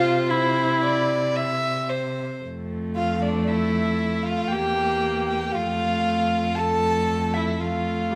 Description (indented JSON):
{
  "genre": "classical, slow romantic movement for string quartet",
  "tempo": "58 BPM",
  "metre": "3/4",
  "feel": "rubato",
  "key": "F major",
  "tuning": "A4 = 440 Hz",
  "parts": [
    { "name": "dark violin", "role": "melody", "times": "0.0-8.2 s", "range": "D5 to A5", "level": "-29 LUFS", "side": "equal", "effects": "none" },
    { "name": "rich violin", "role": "second line", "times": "0.0-8.2 s", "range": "D4 to E5", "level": "-29 LUFS", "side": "equal", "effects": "none" },
    { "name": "warm viola", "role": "accompaniment", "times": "0.0-8.2 s", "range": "G3 to F4", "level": "-27 LUFS", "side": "equal", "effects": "none" },
    { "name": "warm cello", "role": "bass", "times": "0.0-8.2 s", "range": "E2 to C3", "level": "-31 LUFS", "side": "equal", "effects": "none" }
  ],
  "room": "moderate recital hall reverb, RT60 1.6 s",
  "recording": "none",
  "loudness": "-24 LUFS",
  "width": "mono",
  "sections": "0.0-2.4 A section; 2.4-8.2 B section",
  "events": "none",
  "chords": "0.0 C; 2.4 F; 4.5 Edim; 5.5 F"
}